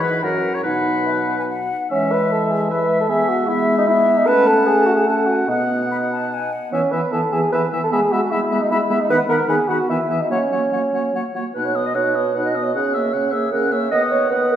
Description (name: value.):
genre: quick classical-period movement for wind quintet.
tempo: 150 BPM.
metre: 3/4.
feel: straight.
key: E major, B major from 9.1 s.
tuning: A4 = 439 Hz.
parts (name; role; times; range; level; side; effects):
silver concert flute; melody; 0.0-14.6 s; E5 to F#6; -25 LUFS; left 4 dB; none.
clear oboe; second line; 0.0-14.6 s; A#4 to F#5; -25 LUFS; left 1 dB; none.
dark French horn; accompaniment; 0.0-14.6 s; B2 to D#4; -25 LUFS; left 1 dB; none.
dark clarinet; accompaniment; 0.0-14.6 s; G#3 to D#5; -24 LUFS; right 4 dB; none.
mellow bassoon; bass; 0.0-14.6 s; F#2 to B4; -20 LUFS; right 1 dB; none.
room: wet recital hall reverb, RT60 1.8 s.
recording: heard from further back in the room.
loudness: -16 LUFS.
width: side -10 dB against mid.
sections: 0.0-1.9 A section; 1.9-11.6 B section; 11.6-14.6 A section.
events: none.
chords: 0.2 F#7; 0.7 B; 1.9 E; 3.1 E/G#; 4.3 F#m/A; 5.5 B; 6.7 E; 7.9 E/G#; 9.1 B/D#; 9.9 E5; 10.3 F#; 11.6 B; 12.7 F#7/C#; 13.9 B/D#.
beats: 0.24 | 0.65 1.07 1.50 | 1.91 2.31 2.71 | 3.10 3.49 3.88 | 4.28 4.67 5.08 | 5.49 5.90 6.31 | 6.72 7.13 7.53 | 7.93 8.32 8.71 | 9.10 9.49 9.89 | 10.30 10.72 11.14 | 11.55 11.95 12.35 | 12.75 13.14 13.53 | 13.92 14.31.